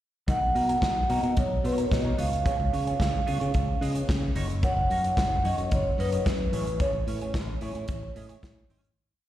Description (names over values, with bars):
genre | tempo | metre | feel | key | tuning
disco | 110 BPM | 4/4 | straight | B major | A4 = 440 Hz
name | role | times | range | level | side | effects
vibraphone with soft mallets | melody | 0.3-8.7 s | B4 to F#5 | -29 LUFS | right 1 dB | slapback echo
semi-hollow electric guitar | accompaniment | 0.3-8.9 s | A#3 to D#5 | -36 LUFS | right 1 dB | wah, analog chorus, slapback echo
modern bright fingered electric bass | bass | 0.3-8.9 s | F#1 to C#3 | -29 LUFS | equal | none
modern studio drum kit | drums | 0.3-9.0 s | hi-hat, kick drum, snare drum | -30 LUFS | equal | none
room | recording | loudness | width
light reverb, studio reverb | live gig heard through the venue's PA, recital hall reverb | -24 LUFS | side -13 dB against mid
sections
0.3-9.0 verse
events
fade-out 6.8-9.0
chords
0.3 Bmaj7; 2.2 C#7; 4.4 F#6; 6.5 Amaj7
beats
| 0.28 0.83 1.37 1.91 | 2.46 3.00 3.54 4.09 | 4.63 5.17 5.71 6.26 | 6.80 7.34 7.88 8.43